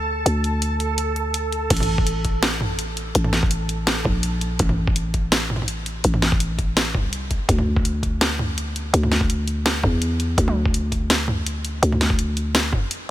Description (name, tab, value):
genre	half-time drum and bass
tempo	166 BPM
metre	4/4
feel	swing 54% on 16ths, half-time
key	unclear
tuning	A4 = 440 Hz
part	growling 808-style bass	bass	0.0-12.7 s	A1 to E2	-22 LUFS	equal	none
part	backwards swelling texture	texture	0.0-1.7 s	A4	-28 LUFS	right 3 dB	built-in reverb
part	drum and bass drum kit	drums	0.3-13.0 s	crash cymbal, hi-hat, snare drum, toms	-23 LUFS	equal	studio reverb
part	electronic kick drum	drums	1.7-12.8 s	none	-23 LUFS	equal	studio reverb
room	digital ambience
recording	none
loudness	-19 LUFS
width	side -14 dB against mid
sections	0.0-1.7 A section; 1.7-13.1 B section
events	drop 1.7-13.1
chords	0.0 D5; 1.7 N.C.